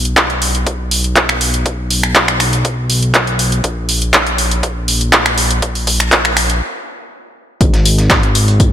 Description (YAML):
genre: progressive house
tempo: 121 BPM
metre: 4/4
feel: straight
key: unclear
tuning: A4 = 440 Hz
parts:
  - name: fat analog bass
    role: bass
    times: 0.0-8.7 s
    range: G#1 to B1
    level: -16 LUFS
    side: equal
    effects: sidechain pumping
  - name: deep house drum kit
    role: drums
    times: 0.1-8.7 s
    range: finger snaps, handclaps, hi-hat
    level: -13 LUFS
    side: equal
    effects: overdrive
  - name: electronic kick drum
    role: drums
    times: 0.2-8.7 s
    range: none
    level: -16 LUFS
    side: equal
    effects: overdrive, high-pass filter on kick
  - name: dusty soul sampler-style drum kit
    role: drums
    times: 7.6-8.7 s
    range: hi-hat, snare drum, tambourine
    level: -22 LUFS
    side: left 4 dB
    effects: high-pass filter on perc, high-pass filter on snare, high-pass filter on hats
room: moderate lush hall reverb, RT60 2.4 s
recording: none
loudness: -11 LUFS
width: side -10 dB against mid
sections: 0.0-7.6 A section; 7.6-8.7 B section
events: build-up 0.0-7.6; stop 6.6-7.6; drop 7.6-8.7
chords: none